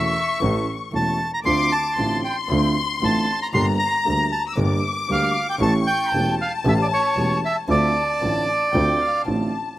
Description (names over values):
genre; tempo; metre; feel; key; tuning
tango; 115 BPM; 4/4; rubato; D minor; A4 = 440 Hz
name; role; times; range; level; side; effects
bandoneon; melody; 0.0-9.2 s; C#5 to C6; -22 LUFS; right 1 dB; slapback echo
warm studio violin section; second line; 0.0-9.8 s; F5 to E6; -26 LUFS; left 5 dB; slapback echo
warm concert grand piano; accompaniment; 0.0-9.5 s; E1 to A4; -24 LUFS; right 2 dB; slapback echo
clear double bass; bass; 0.0-9.5 s; E1 to D2; -26 LUFS; equal; none
room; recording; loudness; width
little or no reverb; recorded outdoors, with no room sound; -18 LUFS; side -15 dB against mid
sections
0.0-9.8 A section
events
none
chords
0.0 A; 1.5 Dm7; 3.5 Gm; 5.6 A7; 7.7 Dm7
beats
0.42 0.94 | 1.46 1.98 2.50 3.02 | 3.54 4.06 4.58 5.09 | 5.61 6.13 6.65 7.17 | 7.69 8.21 8.73 9.25 | 9.77